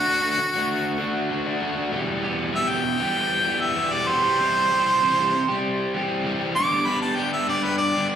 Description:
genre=rock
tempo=97 BPM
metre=4/4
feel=straight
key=E minor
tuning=A4 = 441 Hz
part: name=clear harmonica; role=melody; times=0.0-8.1 s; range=F#4 to D6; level=-22 LUFS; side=right 1 dB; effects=slapback echo, tape echo
part: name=overdriven electric guitar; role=riff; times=0.0-8.2 s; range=E2 to G4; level=-24 LUFS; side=equal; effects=slapback echo
room=light reverb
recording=live gig heard through the venue's PA, recital hall reverb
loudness=-20 LUFS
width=side -8 dB against mid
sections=0.0-8.2 A section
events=harmonica solo 0.0-8.2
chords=0.0 D; 1.9 Em; 4.4 C; 6.6 G

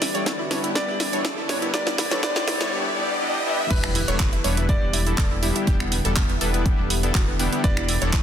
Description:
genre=progressive house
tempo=122 BPM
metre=4/4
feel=straight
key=E minor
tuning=A4 = 440 Hz
part: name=bright concert grand piano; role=melody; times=0.0-8.2 s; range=B4 to D5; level=-30 LUFS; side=equal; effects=sidechain pumping, tape echo
part: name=lush unison pad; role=sustained chords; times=0.0-8.2 s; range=D3 to E4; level=-34 LUFS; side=right 1 dB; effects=chorus, sidechain pumping
part: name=wide unison pluck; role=arpeggios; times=0.0-8.2 s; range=B3 to C#5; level=-30 LUFS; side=right 2 dB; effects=sidechain pumping, tape echo
part: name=house drum kit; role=drums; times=0.0-8.2 s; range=crash cymbal, finger snaps, handclaps, hi-hat, snare drum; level=-26 LUFS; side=right 1 dB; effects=soft clipping on snare
part: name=riser and impact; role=sound effects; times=0.0-5.7 s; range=none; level=-30 LUFS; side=equal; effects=none
part: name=soft supersaw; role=stabs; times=0.1-8.1 s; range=G3 to B4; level=-28 LUFS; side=left 2 dB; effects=sidechain pumping, tape echo
part: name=electronic kick drum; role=drums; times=0.3-8.2 s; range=none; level=-22 LUFS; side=equal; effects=high-pass filter on kick, high-pass filter on room
part: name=round analog bass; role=bass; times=3.7-8.2 s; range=E1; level=-25 LUFS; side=equal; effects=sidechain pumping
room=light reverb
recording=dense, heavily limited modern master, high-pass filter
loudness=-20 LUFS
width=side -9 dB against mid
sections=0.0-3.7 A section; 3.7-8.2 B section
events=build-up 0.0-3.7; drum fill 0.0-2.7; riser 0.0-3.7; filter sweep on supersaw synth 0.0-3.7; drop 3.7-8.2; impact 3.7-5.7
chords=0.0 Em7

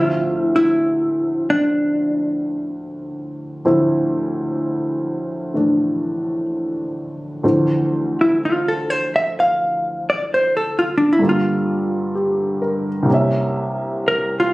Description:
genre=jazz ballad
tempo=64 BPM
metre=4/4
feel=swing 67% on 8ths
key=D minor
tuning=A4 = 441 Hz
part: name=hollow-body jazz guitar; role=melody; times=0.0-14.5 s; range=D4 to F5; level=-17 LUFS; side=equal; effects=none
part: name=warm upright piano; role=accompaniment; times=0.0-14.5 s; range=C2 to E5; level=-20 LUFS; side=equal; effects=none
room=light reverb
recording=recorded on a phone in the room, studio reverb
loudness=-17 LUFS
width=side -20 dB against mid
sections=0.0-7.4 A section; 7.4-14.5 B section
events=hollow-body jazz guitar solo 7.4-14.5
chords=0.0 Dm9; 11.2 Gm7; 13.1 C7b9

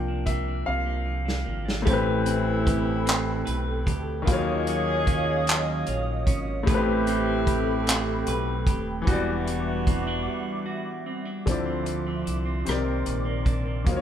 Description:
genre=slow six-eight R&B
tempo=50 BPM (dotted quarters)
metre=6/8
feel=straight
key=unclear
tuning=A4 = 440 Hz
part: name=clean electric guitar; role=second line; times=0.0-14.0 s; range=C3 to B4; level=-32 LUFS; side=right 4 dB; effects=none
part: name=clear baby grand piano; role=accompaniment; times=0.0-14.0 s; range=A2 to G5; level=-29 LUFS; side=left 4 dB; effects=none
part: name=deep dub fingered electric bass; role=bass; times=0.0-14.0 s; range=D#1 to D#2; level=-29 LUFS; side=equal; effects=none
part: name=warm soul drum kit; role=drums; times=0.3-14.0 s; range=handclaps, hi-hat, kick drum, rim click, snare drum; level=-26 LUFS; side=right 1 dB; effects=none
part: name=hollow soft pad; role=sustained chords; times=1.9-14.0 s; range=F3 to D#6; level=-32 LUFS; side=right 1 dB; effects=ensemble chorus
part: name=warm horn section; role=stabs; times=1.9-11.0 s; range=E3 to G#4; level=-31 LUFS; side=right 1 dB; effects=none
room=moderate large studio reverb, RT60 1.1 s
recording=band playing live in one room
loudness=-23 LUFS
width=side -9 dB against mid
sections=0.0-1.9 A section; 1.9-11.5 B section; 11.5-14.0 C section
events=grand piano solo 0.0-1.9; drum fill 0.7-1.9; break 10.3-11.5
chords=0.0 C9sus4; 1.9 Am9; 4.3 D#m9; 6.7 Am9; 9.1 Em9; 11.5 Dm9; 12.7 Cm9

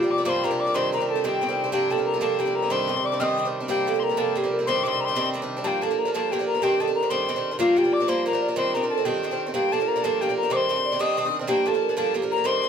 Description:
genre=celtic folk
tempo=123 BPM (dotted quarters)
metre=6/8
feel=straight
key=unclear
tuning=A4 = 439 Hz
part: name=marimba with soft mallets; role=melody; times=0.0-12.7 s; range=F4 to Eb5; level=-24 LUFS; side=right 2 dB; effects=plate reverb
part: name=bright mid whistle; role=second line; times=0.0-12.7 s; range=F5 to F6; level=-27 LUFS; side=left 8 dB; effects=none
part: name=Irish bouzouki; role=accompaniment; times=0.0-12.7 s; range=G2 to D4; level=-28 LUFS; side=right 3 dB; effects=none
part: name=pedal harmonium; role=drone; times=0.0-5.7 s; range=C3 to G3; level=-33 LUFS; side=left 1 dB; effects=none
room=wet studio reverb, RT60 0.6 s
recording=none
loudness=-21 LUFS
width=side -7 dB against mid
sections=0.0-5.6 A section; 5.6-12.7 A section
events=none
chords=0.0 Bb6; 0.7 Cmadd9; 1.7 Bb6; 2.7 Cmadd9; 3.7 Bb6; 4.7 Cmadd9; 5.6 Bb6; 6.6 Cmadd9; 7.6 Bb6; 8.6 Cmadd9; 9.5 Bb6; 10.5 Cmadd9; 11.5 Bb6

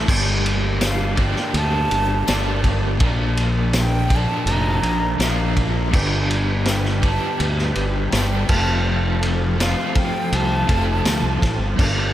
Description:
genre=psychedelic rock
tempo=82 BPM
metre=4/4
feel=straight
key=unclear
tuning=A4 = 439 Hz
part: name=percussive tonewheel organ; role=sustained chords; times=0.0-12.1 s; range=A4 to B5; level=-32 LUFS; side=right 4 dB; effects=slow rotary speaker, chorus vibrato
part: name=overdriven semi-hollow guitar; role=riff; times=0.0-12.1 s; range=F2 to Bb4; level=-24 LUFS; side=left 1 dB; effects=tremolo
part: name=fuzz fingered electric bass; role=bass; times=0.0-12.1 s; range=F1 to D2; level=-21 LUFS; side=equal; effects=overdrive
part: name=vintage drum kit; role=drums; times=0.1-12.0 s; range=crash cymbal, kick drum, ride cymbal, snare drum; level=-22 LUFS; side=equal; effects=none
part: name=breathy concert flute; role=melody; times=0.8-11.4 s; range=D5 to Bb5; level=-27 LUFS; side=right 1 dB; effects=analog delay
part: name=tambourine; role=percussion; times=0.8-11.2 s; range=none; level=-36 LUFS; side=left 8 dB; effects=none
room=moderate huge ambient reverb, RT60 7.8 s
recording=dreamy mix soaked in reverb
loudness=-17 LUFS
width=side -12 dB against mid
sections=0.1-12.1 A section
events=none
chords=0.1 Gmadd9; 3.0 Bb; 5.9 G; 8.5 F

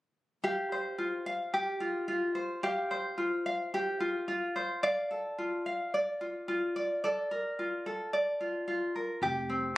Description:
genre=acoustic pop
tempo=109 BPM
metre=4/4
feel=straight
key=F major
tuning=A4 = 439 Hz
part: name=tenor ukulele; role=accompaniment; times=0.4-9.8 s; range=C4 to F5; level=-30 LUFS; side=equal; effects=none
part: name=upright bass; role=bass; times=9.2-9.8 s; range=F1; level=-37 LUFS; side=left 1 dB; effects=none
room=light reverb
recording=recorded on a phone in the room, studio ambience, compression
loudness=-30 LUFS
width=side -17 dB against mid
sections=0.4-9.2 A section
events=none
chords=0.4 Fsus2; 4.8 Dm; 6.8 Bbmaj7; 9.2 Fsus2

